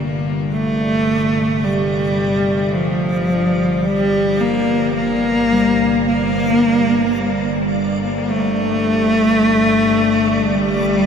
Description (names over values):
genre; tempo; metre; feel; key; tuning
dark ambient drone; 54 BPM; 4/4; straight; G minor; A4 = 444 Hz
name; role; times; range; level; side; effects
bronze singing bowl; arpeggios; 0.0-11.1 s; D3 to G3; -24 LUFS; equal; ping-pong delay
bowed-like drone; drone; 0.0-11.1 s; G1 to G2; -23 LUFS; right 1 dB; built-in reverb
backwards swelling texture; texture; 0.0-11.1 s; D5; -31 LUFS; left 1 dB; built-in reverb
clear cello; melody; 0.5-11.1 s; F3 to Bb3; -16 LUFS; left 1 dB; ping-pong delay
room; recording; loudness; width
wet huge ambient reverb, RT60 7.5 s; none; -14 LUFS; side -7 dB against mid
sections
0.0-11.1 A section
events
fade-in on synth texture 0.0-11.1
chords
0.0 Gm